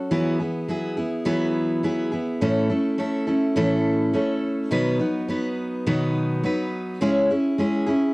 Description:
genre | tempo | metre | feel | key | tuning
pop | 104 BPM | 4/4 | swing 60% on 16ths | E major | A4 = 440 Hz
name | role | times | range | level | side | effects
picked steel-string acoustic guitar | solo | 0.0-8.1 s | A2 to B4 | -21 LUFS | equal | none
room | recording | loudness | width
light reverb, small room reverb | home recording on cassette | -21 LUFS | side -24 dB against mid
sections
0.0-7.0 A section; 7.0-8.1 B section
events
none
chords
0.1 Eadd9; 2.4 A; 4.7 B; 7.0 C#m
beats
| 0.12 0.69 1.26 1.84 | 2.41 2.99 3.56 4.14 | 4.71 5.29 5.86 6.44 | 7.01 7.59

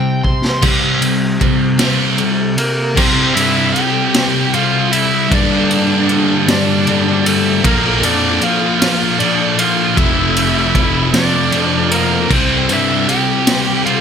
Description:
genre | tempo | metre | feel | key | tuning
quiet-loud alternative rock | 52 BPM (dotted quarters) | 6/8 | straight | unclear | A4 = 439 Hz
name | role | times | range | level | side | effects
biting lead guitar | melody | 0.0-14.0 s | A3 to C6 | -19 LUFS | equal | overdrive, slapback echo
electric guitar through a small old amp | arpeggios | 0.0-0.6 s | C3 to C5 | -27 LUFS | right 2 dB | analog chorus
scooped high-gain guitar | riff | 0.0-14.0 s | F2 to C4 | -18 LUFS | right 14 dB | distortion
sludgy distorted guitar | riff | 0.0-14.0 s | F2 to E4 | -18 LUFS | left 14 dB | overdrive
fuzz picked electric bass | bass | 0.0-13.1 s | F1 to G3 | -19 LUFS | equal | overdrive
raw garage drum kit | drums | 0.2-14.0 s | crash cymbal, kick drum, ride cymbal, snare drum | -17 LUFS | equal | none
room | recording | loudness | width
small room ambience | none | -12 LUFS | side -7 dB against mid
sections
0.6-3.0 A section; 3.0-14.0 B section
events
drum fill 0.2-0.6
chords
0.0 C5; 3.0 C; 5.3 Gm; 7.6 Bb; 10.0 F6; 12.3 C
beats
| 0.64 1.81 | 2.98 4.14 | 5.31 6.47 | 7.64 8.81 | 9.97 11.13 | 12.30 13.46

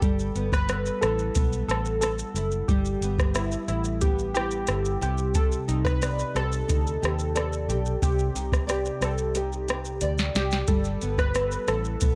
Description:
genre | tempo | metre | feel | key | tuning
indie pop, bedroom pop | 90 BPM | 4/4 | straight | G major | A4 = 440 Hz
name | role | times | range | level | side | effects
warm analog keys | melody | 0.0-12.2 s | E4 to B4 | -32 LUFS | equal | analog chorus, tape echo
nylon-string guitar | accompaniment | 0.0-12.2 s | C3 to D5 | -34 LUFS | equal | analog chorus, vibrato effect, tape echo
vintage muted fingered electric bass | bass | 0.0-12.2 s | F#1 to Eb2 | -32 LUFS | equal | none
soft vintage rhythm box | drums | 0.0-12.2 s | hi-hat, kick drum, rim click, shaker, snare drum | -29 LUFS | equal | none
room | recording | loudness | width
light reverb, digital ambience | echo-heavy mix | -26 LUFS | mono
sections
0.0-12.2 A section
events
drum fill 10.0-10.7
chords
0.0 G69; 5.0 Cmadd9; 10.7 G69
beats
| 0.02 0.69 1.35 2.02 | 2.69 3.35 4.02 4.69 | 5.35 6.02 6.69 7.35 | 8.02 8.69 9.35 10.02 | 10.68 11.35 12.02

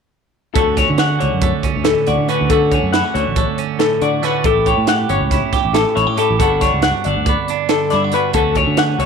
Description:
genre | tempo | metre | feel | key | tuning
math rock and midwest emo | 277 BPM (eighths) | 9/8 | straight | D major | A4 = 440 Hz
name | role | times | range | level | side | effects
electric guitar through a small old amp | arpeggios | 0.5-9.1 s | A4 to F#5 | -17 LUFS | left 9 dB | tremolo
twelve-string electric guitar | accompaniment | 0.6-9.1 s | D2 to G4 | -20 LUFS | right 12 dB | none
fingered electric bass | bass | 0.6-9.1 s | G1 to D3 | -20 LUFS | equal | none
crisp fusion drum kit | drums | 0.6-9.1 s | hi-hat, kick drum, snare drum | -20 LUFS | right 4 dB | none
room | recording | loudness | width
wet spring reverb, RT60 1.6 s, small room reverb | 1960s-style stereo with parts hard left and right | -14 LUFS | side -6 dB against mid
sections
0.6-9.1 A section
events
none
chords
0.6 Dmaj7; 4.5 A; 6.4 Gmaj9; 8.3 Dmaj7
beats
| 0.56 0.77 0.99 1.21 1.42 1.64 1.86 2.07 2.29 | 2.51 2.72 2.94 3.15 3.37 3.59 3.80 4.02 4.24 | 4.45 4.67 4.89 5.10 5.32 5.54 5.75 5.97 6.18 | 6.40 6.62 6.83 7.05 7.26 7.48 7.70 7.91 8.13 | 8.35 8.56 8.78 8.99

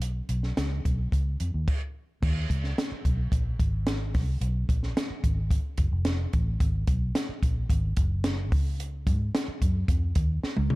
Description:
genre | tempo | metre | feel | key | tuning
uptempo 1960s-style soul | 110 BPM | 4/4 | straight | unclear | A4 = 440 Hz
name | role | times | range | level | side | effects
vintage muted fingered electric bass | bass | 0.0-10.8 s | E#1 to C#3 | -27 LUFS | equal | none
compact cocktail drum kit | drums | 0.0-10.8 s | crash cymbal, hi-hat, kick drum, snare drum, toms | -27 LUFS | equal | none
room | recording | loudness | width
little or no reverb | dark, warm production | -25 LUFS | side -20 dB against mid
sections
0.0-2.2 A section; 2.2-10.8 B section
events
stop 1.7-2.2; drum fill 10.4-10.8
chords
none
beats
| 0.03 0.58 1.13 1.68 | 2.22 2.77 3.32 3.87 | 4.42 4.96 5.51 6.06 | 6.60 7.15 7.70 8.24 | 8.79 9.34 9.88 10.43

